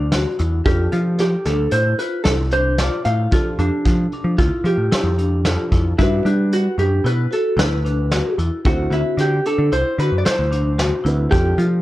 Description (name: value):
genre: progressive instrumental, band music in an uneven meter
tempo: 113 BPM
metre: 5/4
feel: straight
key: unclear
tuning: A4 = 439 Hz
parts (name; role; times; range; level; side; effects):
- vintage hollow-body jazz guitar; melody; 0.0-11.7 s; D4 to F5; -22 LUFS; right 1 dB; plate reverb
- dark baby grand piano; accompaniment; 0.0-11.8 s; D3 to C5; -28 LUFS; right 1 dB; plate reverb
- vibraphone with medium mallets; arpeggios; 0.0-11.8 s; D4 to G4; -25 LUFS; left 3 dB; ping-pong delay
- overdriven picked electric bass; bass; 0.0-11.8 s; C2 to G3; -19 LUFS; equal; none
- vintage brush drum kit; drums; 0.1-11.7 s; hi-hat, kick drum, snare drum; -22 LUFS; equal; none
room: light reverb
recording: worn, warbling old tape, cassette tape, warbly pitch drift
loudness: -16 LUFS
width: side -15 dB against mid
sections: 0.0-11.8 A section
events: none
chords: 0.0 D13; 0.7 F69; 6.0 Gmaj7; 8.7 D9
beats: 0.12 | 0.66 1.19 1.72 2.26 2.79 | 3.32 3.85 4.39 4.92 5.45 | 5.99 6.52 7.05 7.59 8.12 | 8.65 9.19 9.72 10.25 10.79 | 11.32